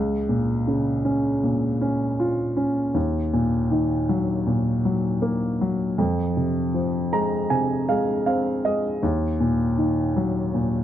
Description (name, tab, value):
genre	pop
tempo	79 BPM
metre	4/4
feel	straight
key	unclear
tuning	A4 = 442 Hz
part	warm baby grand piano	solo	0.0-10.8 s	Db2 to Bb5	-21 LUFS	equal	none
room	light reverb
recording	dry, close 1970s-style studio recording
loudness	-21 LUFS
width	side -11 dB against mid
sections	0.0-10.8 A section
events	grand piano fill 6.7-9.0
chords	0.0 Bbm/Db; 3.0 Ebm; 6.0 Fm; 9.0 Ebm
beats	0.67 1.43 2.19 | 2.95 3.71 4.47 5.23 | 5.99 6.75 7.51 8.27 | 9.03 9.79 10.55